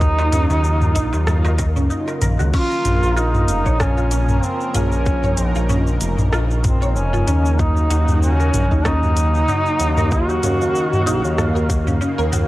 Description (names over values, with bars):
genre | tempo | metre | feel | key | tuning
organic downtempo | 95 BPM | 4/4 | swing 56% on 16ths | Eb minor | A4 = 441 Hz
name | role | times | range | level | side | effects
mellow duduk | melody | 0.0-12.0 s | C4 to Gb4 | -22 LUFS | equal | tape echo
warm analog pad | sustained chords | 0.0-12.5 s | Db3 to F5 | -26 LUFS | equal | chorus, sidechain pumping
smooth synth bass | bass | 0.0-12.5 s | F1 to Eb2 | -18 LUFS | equal | tube saturation
electronic kick drum | drums | 0.0-11.8 s | none | -20 LUFS | equal | none
organic electronic drum kit | drums | 0.0-12.5 s | cabasa, crash cymbal, hi-hat, rim click, toms | -23 LUFS | equal | none
mallet-like synth pluck | arpeggios | 0.2-12.5 s | Db4 to Db5 | -27 LUFS | equal | ensemble chorus, tape echo
darbuka | percussion | 0.2-2.5 s | none | -29 LUFS | right 1 dB | none
room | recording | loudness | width
light reverb, digital ambience | worn, warbling old tape, cassette tape, warbly pitch drift | -15 LUFS | side -17 dB against mid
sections
0.0-2.5 A section; 2.5-12.5 B section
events
none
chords
0.0 Ebm7; 2.5 Bbm; 7.6 Ebm7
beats
| 0.01 0.64 1.28 1.91 | 2.54 3.17 3.80 4.43 | 5.07 5.70 6.33 6.96 | 7.59 8.22 8.86 9.49 | 10.12 10.75 11.38 12.01